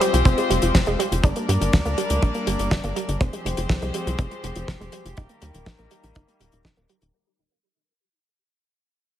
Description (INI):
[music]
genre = italo disco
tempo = 122 BPM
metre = 4/4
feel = straight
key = unclear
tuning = A4 = 437 Hz
[part]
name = rich chamber string section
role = sustained chords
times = 0.0-7.1 s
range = Eb3 to D5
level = -26 LUFS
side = left 3 dB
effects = low-pass filter
[part]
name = analog pluck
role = arpeggios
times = 0.0-7.1 s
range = D3 to Eb4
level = -28 LUFS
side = right 4 dB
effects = chorus, ping-pong delay
[part]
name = damped 70s drum kit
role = drums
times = 0.0-7.1 s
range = hi-hat, snare drum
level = -27 LUFS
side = left 1 dB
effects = small room ambience
[part]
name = tight sequencer bass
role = bass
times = 0.1-7.1 s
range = Eb1 to G2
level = -25 LUFS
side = equal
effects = tube saturation
[part]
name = kick drum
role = drums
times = 0.3-6.7 s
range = none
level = -20 LUFS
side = equal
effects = small room ambience
[sound]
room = light reverb, small room ambience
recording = heavily compressed radio sound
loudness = -20 LUFS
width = side -11 dB against mid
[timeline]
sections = 0.0-7.1 A section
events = fade-out 0.0-7.1; filter sweep on synth arpeggio sound 0.0-7.1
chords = 0.0 Fmadd9; 1.2 Gm; 3.2 Fmadd9; 5.2 Eb